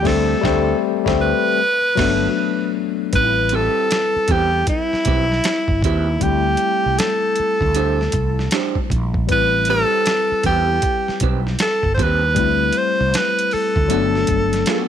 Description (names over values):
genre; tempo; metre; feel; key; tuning
R&B, neo-soul; 78 BPM; 4/4; swing 62% on 16ths; A dorian; A4 = 440 Hz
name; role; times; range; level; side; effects
clear tenor saxophone; melody; 0.0-14.9 s; E4 to C5; -19 LUFS; right 1 dB; none
tine electric piano; accompaniment; 0.0-14.9 s; F#3 to B4; -23 LUFS; left 14 dB; medium stereo tremolo
mellow fretless electric bass; bass; 0.0-14.6 s; G1 to E2; -21 LUFS; right 1 dB; transformer saturation
electric guitar through a small old amp; second line; 0.1-14.9 s; B3 to C5; -26 LUFS; right 13 dB; none
boom bap sampler-style drum kit; drums; 0.1-14.9 s; crash cymbal, hi-hat, kick drum, snare drum; -23 LUFS; right 1 dB; none
room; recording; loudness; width
little or no reverb; 1960s-style stereo with parts hard left and right; -16 LUFS; side -9 dB against mid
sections
0.0-3.1 A section; 3.1-14.9 B section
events
band accent 0.1-3.1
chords
0.1 D7sus4; 1.6 Gmaj9; 3.1 Am9; 6.2 D7sus4; 9.3 Am9; 12.4 D7sus4; 13.9 Gmaj9